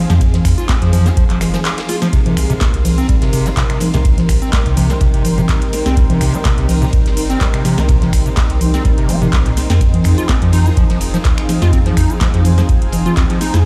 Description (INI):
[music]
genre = acid house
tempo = 125 BPM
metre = 4/4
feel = swing 54% on 16ths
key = C minor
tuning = A4 = 440 Hz
[part]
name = warm analog pad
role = sustained chords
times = 0.0-13.7 s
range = F3 to Bb4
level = -27 LUFS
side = equal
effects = chorus, tremolo, sidechain pumping
[part]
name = granular cloud pad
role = texture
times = 0.0-13.7 s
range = Eb4 to C6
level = -28 LUFS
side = equal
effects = built-in reverb, sidechain pumping
[part]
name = overdriven acid bass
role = riff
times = 0.1-13.6 s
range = Bb2 to F4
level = -23 LUFS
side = equal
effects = subtle chorus, sidechain pumping, delay
[part]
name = round analog bass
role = bass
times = 0.1-13.7 s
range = F1 to F2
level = -18 LUFS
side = equal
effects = sidechain pumping
[part]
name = booming analog drum machine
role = drums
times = 0.1-13.6 s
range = congas, finger snaps, handclaps, hi-hat, shaker, snare drum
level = -22 LUFS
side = equal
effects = overdrive
[part]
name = warm soul drum kit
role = drums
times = 0.1-13.5 s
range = hi-hat, ride cymbal, snare drum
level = -35 LUFS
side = equal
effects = sidechain pumping on cymbals, high-pass filter on cymbals, sidechain pumping on hats, high-pass filter on hats, high-pass filter on snare, high-pass filter on room
[part]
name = electronic kick drum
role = drums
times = 0.2-13.3 s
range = none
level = -17 LUFS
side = equal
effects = none
[sound]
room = little or no reverb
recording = played on a big sound system in a bare room, stone room reverb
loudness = -14 LUFS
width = mono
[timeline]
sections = 0.0-13.7 A section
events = break 1.6-2.1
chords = 0.0 Fm7; 2.1 Cm7; 9.8 Fm7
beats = | 0.21 0.69 1.17 1.65 | 2.13 2.61 3.09 3.57 | 4.05 4.53 5.01 5.49 | 5.97 6.45 6.93 7.41 | 7.89 8.37 8.85 9.33 | 9.81 10.29 10.77 11.25 | 11.73 12.21 12.69 13.17 | 13.65